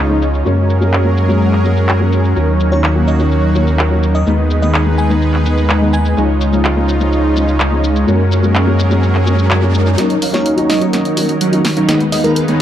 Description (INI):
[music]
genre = EDM, festival progressive house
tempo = 126 BPM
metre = 4/4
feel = straight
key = Eb minor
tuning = A4 = 440 Hz
[part]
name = supersaw pad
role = sustained chords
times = 0.0-12.6 s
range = Eb2 to Db5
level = -22 LUFS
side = right 1 dB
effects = low-pass filter
[part]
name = supersaw chords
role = riff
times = 0.0-12.6 s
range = Gb3 to Gb5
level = -17 LUFS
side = equal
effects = wide subtle chorus, cassette tape, low-pass filter, dub echo
[part]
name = saturated sub bass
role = bass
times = 0.0-10.0 s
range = Db2 to Gb2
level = -14 LUFS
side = equal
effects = none
[part]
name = dark concert grand piano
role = accompaniment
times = 0.1-12.6 s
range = Eb3 to Eb4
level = -18 LUFS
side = left 2 dB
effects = dub echo
[part]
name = big-room dance drum kit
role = drums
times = 0.2-12.6 s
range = handclaps, hi-hat, shaker, snare drum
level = -22 LUFS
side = equal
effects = low-pass filter on cymbals, low-pass filter on perc, low-pass filter on snare, low-pass filter on hats
[part]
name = bell-like FM electric piano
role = melody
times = 2.7-6.2, 10.3-12.4 s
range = Bb4 to Ab5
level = -24 LUFS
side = equal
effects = chorus, cassette tape, dub echo
[part]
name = riser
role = sound effects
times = 7.6-12.6 s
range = none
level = -28 LUFS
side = right 1 dB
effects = none
[sound]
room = light reverb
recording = dark, warm production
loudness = -11 LUFS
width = side -11 dB against mid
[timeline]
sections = 0.0-10.0 A section; 10.0-12.6 B section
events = build-up 10.0-12.6; drum fill 10.0-12.6; filter sweep on supersaw synth 10.0-12.6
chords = 0.5 Gbadd9; 2.4 Ebm7; 4.3 Abm/Eb; 6.2 Dbadd9; 8.1 Gbadd9; 10.0 Ebm7; 11.9 Abm/Eb